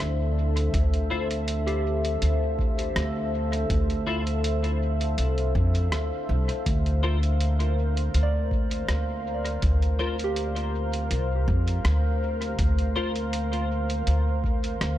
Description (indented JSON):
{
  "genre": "ambient dub",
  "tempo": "81 BPM",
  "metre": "4/4",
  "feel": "swing 54% on 16ths",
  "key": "unclear",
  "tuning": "A4 = 440 Hz",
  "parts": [
    { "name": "deep dark ambient pad", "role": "sustained chords", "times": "0.0-15.0 s", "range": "D4 to F5", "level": "-30 LUFS", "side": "left 1 dB", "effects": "chorus, built-in reverb" },
    { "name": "soft synth bell", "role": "arpeggios", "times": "0.0-15.0 s", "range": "G4 to D5", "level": "-36 LUFS", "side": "right 4 dB", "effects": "chorus, tape echo" },
    { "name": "upright bass", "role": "bass", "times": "0.0-15.0 s", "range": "C2 to F2", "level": "-24 LUFS", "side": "equal", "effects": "none" },
    { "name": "lo-fi sampler-style drum kit", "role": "drums", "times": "0.0-15.0 s", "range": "hi-hat, rim click", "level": "-34 LUFS", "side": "right 1 dB", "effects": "dub echo" },
    { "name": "electronic kick drum", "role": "drums", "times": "0.7-14.6 s", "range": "none", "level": "-28 LUFS", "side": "equal", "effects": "overdrive" },
    { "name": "clean electric guitar", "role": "stabs", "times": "1.1-13.1 s", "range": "E4 to C5", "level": "-35 LUFS", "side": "left 4 dB", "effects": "ensemble chorus, dub echo" }
  ],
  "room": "little or no reverb",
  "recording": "none",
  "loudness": "-23 LUFS",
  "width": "side -13 dB against mid",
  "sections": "0.0-15.0 A section",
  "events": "none",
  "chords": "0.0 Dm9; 6.7 Bbsus2",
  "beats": "| 0.73 1.48 2.22 2.96 | 3.70 4.44 5.18 5.92 | 6.66 7.40 8.14 8.88 | 9.62 10.37 11.11 11.85 | 12.59 13.33 14.07 14.81"
}